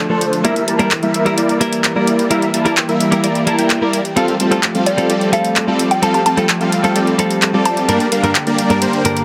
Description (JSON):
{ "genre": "EDM, festival progressive house", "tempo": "129 BPM", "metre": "4/4", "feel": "straight", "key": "unclear", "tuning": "A4 = 440 Hz", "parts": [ { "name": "direct-recorded clean electric guitar", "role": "accompaniment", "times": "0.0-9.2 s", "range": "G2 to Bb4", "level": "-22 LUFS", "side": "equal", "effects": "delay" }, { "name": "lush unison pad", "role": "sustained chords", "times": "0.0-9.2 s", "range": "D3 to G4", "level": "-25 LUFS", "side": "equal", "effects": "chorus" }, { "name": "supersaw chords", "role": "riff", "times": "0.1-9.0 s", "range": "F3 to A5", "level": "-18 LUFS", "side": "equal", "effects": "low-pass filter, delay" }, { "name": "big-room dance drum kit", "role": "drums", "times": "0.2-9.2 s", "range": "handclaps, hi-hat", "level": "-22 LUFS", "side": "equal", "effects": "none" }, { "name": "hollow square pluck", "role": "melody", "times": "4.9-7.9 s", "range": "D5 to A5", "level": "-24 LUFS", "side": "equal", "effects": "chorus, delay" } ], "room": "light reverb", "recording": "heavily compressed radio sound", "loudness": "-15 LUFS", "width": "mono", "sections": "0.0-9.2 A section", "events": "filter sweep on supersaw synth 0.0-9.2; filter sweep on analog synth pad 0.0-9.2", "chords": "0.4 Edim; 4.2 Fadd9; 7.9 Gm" }